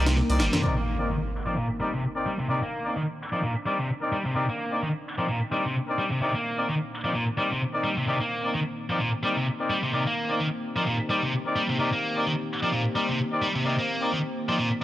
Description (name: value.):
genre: breakbeat, breaks.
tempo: 129 BPM.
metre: 4/4.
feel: swing 56% on 16ths.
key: C minor.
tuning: A4 = 440 Hz.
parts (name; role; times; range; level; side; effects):
deep dark ambient pad; sustained chords; 0.0-14.8 s; Bb3 to G5; -34 LUFS; left 1 dB; chorus, built-in reverb.
scooped high-gain guitar; riff; 0.0-14.7 s; Bb2 to Bb3; -27 LUFS; equal; distortion, low-pass filter, analog delay.
brilliant horn section; stabs; 0.0-14.8 s; C4 to D5; -30 LUFS; left 1 dB; low-pass filter, analog delay.
saturated sub bass; bass; 0.0-0.5 s; G1 to C2; -23 LUFS; equal; none.
breakbeat sampler-style drum kit; drums; 0.1-0.6 s; hi-hat, snare drum; -29 LUFS; equal; studio reverb.
congas; percussion; 0.5-0.6 s; none; -33 LUFS; left 2 dB; none.
impact; sound effects; 0.6-2.5 s; none; -32 LUFS; equal; none.
room: light reverb.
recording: dry, gritty hardware recording, transformer saturation.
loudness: -24 LUFS.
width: side -14 dB against mid.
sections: 0.6-14.8 A section.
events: impact 0.6-2.5; filter sweep on distorted electric guitar 0.6-14.8; filter sweep on ambient pad 0.6-14.8.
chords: 0.0 Cm9.